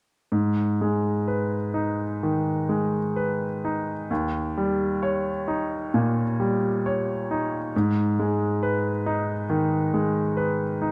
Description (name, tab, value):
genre	classical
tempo	60-70 BPM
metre	4/4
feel	rubato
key	G# minor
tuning	A4 = 440 Hz
part	bright grand piano	accompaniment	0.3-10.9 s	D#2 to C#5	-25 LUFS	equal	none
room	moderate scoring stage reverb, RT60 2.1 s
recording	close, detailed microphones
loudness	-25 LUFS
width	mono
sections	0.3-10.9 A section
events	none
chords	0.3 G#m; 4.1 D#7; 7.7 G#m